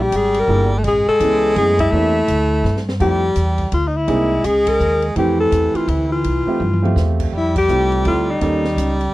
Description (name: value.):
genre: jazz, small-group swing and bop.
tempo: 166 BPM.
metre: 3/4.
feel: swing 63% on 8ths.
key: F major.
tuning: A4 = 436 Hz.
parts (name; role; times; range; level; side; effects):
clear alto saxophone; melody; 0.0-9.0 s; Eb4 to Bb4; -18 LUFS; left 2 dB; none.
warm baritone saxophone; second line; 0.0-9.1 s; E3 to A3; -22 LUFS; right 2 dB; none.
upright bass; bass; 0.0-9.1 s; G1 to G2; -20 LUFS; equal; none.
open jazz drum kit; drums; 0.1-9.1 s; crash cymbal, hi-hat, kick drum, ride cymbal, snare drum, toms; -29 LUFS; equal; none.
warm concert grand piano; accompaniment; 0.5-8.6 s; E3 to F5; -23 LUFS; right 5 dB; none.
room: light reverb.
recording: dry, close 1970s-style studio recording.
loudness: -14 LUFS.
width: side -17 dB against mid.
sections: 0.0-7.3 A section; 7.3-9.1 B section.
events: band accent 1.7, 4.6, 7.5; drum fill 2.6-3.0, 6.6-7.0.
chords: 0.0 Bb7#11; 0.8 Amaj7; 1.9 C9; 3.0 Fmaj9; 4.1 C7alt; 5.2 Fmaj9; 8.4 Eb7#11.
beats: 0.13 0.49 | 0.85 1.21 1.57 | 1.93 2.29 2.65 | 3.01 3.37 3.73 | 4.09 4.45 4.81 | 5.17 5.53 5.89 | 6.25 6.61 6.97 | 7.33 7.69 8.06 | 8.42 8.78.